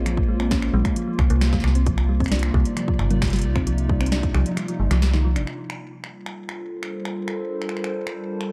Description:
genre	IDM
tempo	133 BPM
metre	4/4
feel	straight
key	G minor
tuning	A4 = 439 Hz
part	warbly tape-like pad	sustained chords	0.0-8.5 s	C3 to Eb5	-31 LUFS	equal	chorus, built-in reverb, phaser, vintage 12-bit sampler grit
part	metallic FM bass	bass	0.0-5.5 s	G1 to C2	-23 LUFS	equal	tube saturation
part	thumb-piano-like synth pluck	arpeggios	0.1-5.4 s	F3 to Eb4	-30 LUFS	equal	chorus, digital delay
part	booming analog drum machine	drums	0.1-8.5 s	finger snaps, hi-hat, snare drum, toms	-32 LUFS	equal	overdrive
part	electronic kick drum	drums	0.2-4.3 s	none	-27 LUFS	equal	none
room	moderate plate reverb, RT60 1.6 s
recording	dark, warm production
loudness	-22 LUFS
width	mono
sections	0.0-5.5 A section; 5.5-8.5 B section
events	kick drops out 4.6-5.5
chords	0.0 Bbm11; 1.0 Cm11; 5.5 Gm11

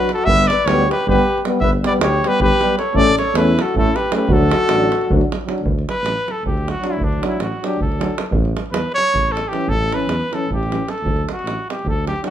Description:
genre	balkan folk, Balkan brass band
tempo	312 BPM (eighths)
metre	7/8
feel	straight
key	D major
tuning	A4 = 440 Hz
part	warm trumpet	melody	0.0-12.3 s	D4 to E5	-20 LUFS	equal	none
part	mellow flugelhorn	second line	0.0-5.3 s	E4 to B4	-22 LUFS	left 3 dB	none
part	clear trombone	accompaniment	0.0-12.3 s	E3 to A3	-25 LUFS	right 4 dB	none
part	warm euphonium	accompaniment	0.0-12.3 s	B3 to D4	-24 LUFS	left 5 dB	none
part	davul	percussion	0.0-12.3 s	none	-22 LUFS	right 1 dB	none
part	mellow tuba	bass	0.3-12.1 s	G1 to E2	-22 LUFS	equal	none
room	moderate large studio reverb, RT60 1.1 s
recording	band playing live in one room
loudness	-15 LUFS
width	side -10 dB against mid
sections	0.0-5.6 A section; 5.6-12.3 B section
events	trumpet solo 5.6-12.3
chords	0.3 G; 2.9 A; 4.3 D; 8.3 A; 11.0 D

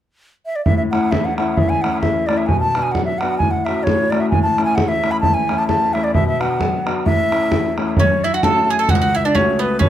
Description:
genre	celtic folk, Celtic polka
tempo	131 BPM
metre	2/4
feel	swing 57% on 8ths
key	A major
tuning	A4 = 440 Hz
part	bright baroque flute	melody	0.5-9.9 s	B4 to B5	-19 LUFS	right 2 dB	none
part	bright baby grand piano	accompaniment	0.7-9.9 s	C#2 to F#4	-20 LUFS	left 4 dB	none
part	bodhran	percussion	0.7-9.9 s	none	-20 LUFS	right 2 dB	none
part	bowl-back mandolin	second line	8.0-9.9 s	B3 to A4	-21 LUFS	right 4 dB	none
room	moderate studio reverb, RT60 0.5 s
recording	none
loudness	-15 LUFS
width	side -11 dB against mid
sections	0.7-8.0 A section; 8.0-9.9 B section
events	none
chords	0.0 N.C.; 0.7 A; 2.5 Bm; 3.4 F#m/A; 4.3 A; 6.1 Bm; 7.1 A; 8.0 F#m

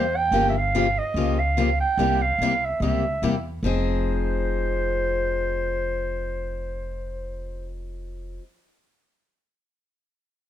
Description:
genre	acoustic string swing (jazz manouche)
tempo	145 BPM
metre	4/4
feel	swing 62% on 8ths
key	F minor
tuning	A4 = 441 Hz
part	growling clarinet	melody	0.0-7.7 s	C5 to G5	-25 LUFS	right 3 dB	none
part	picked steel-string acoustic guitar	accompaniment	0.0-8.4 s	C3 to Ab4	-27 LUFS	left 5 dB	none
part	upright bass	bass	0.0-8.4 s	F1 to E2	-28 LUFS	equal	none
room	light reverb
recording	dark, warm production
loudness	-21 LUFS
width	side -11 dB against mid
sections	0.3-3.6 A section; 3.6-7.0 B section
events	none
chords	0.3 Gm7b5; 2.0 C7b9; 3.6 Fm7

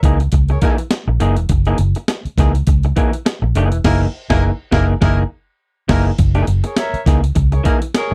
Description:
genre	funk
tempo	102 BPM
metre	4/4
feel	swing 56% on 16ths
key	F# mixolydian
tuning	A4 = 440 Hz
part	electric guitar through a small old amp	accompaniment	0.0-8.1 s	E3 to G#4	-23 LUFS	equal	none
part	vintage muted fingered electric bass	bass	0.0-8.1 s	E1 to C#2	-18 LUFS	equal	none
part	breakbeat sampler-style drum kit	drums	0.0-8.1 s	crash cymbal, hi-hat, kick drum, snare drum	-20 LUFS	equal	none
part	warm horn section	second line	0.5-8.1 s	A#3 to E5	-25 LUFS	equal	none
room	little or no reverb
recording	dry, close 1970s-style studio recording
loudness	-16 LUFS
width	mono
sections	0.0-6.2 A section; 6.2-8.1 B section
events	band accent 3.8-6.2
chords	0.0 F#13

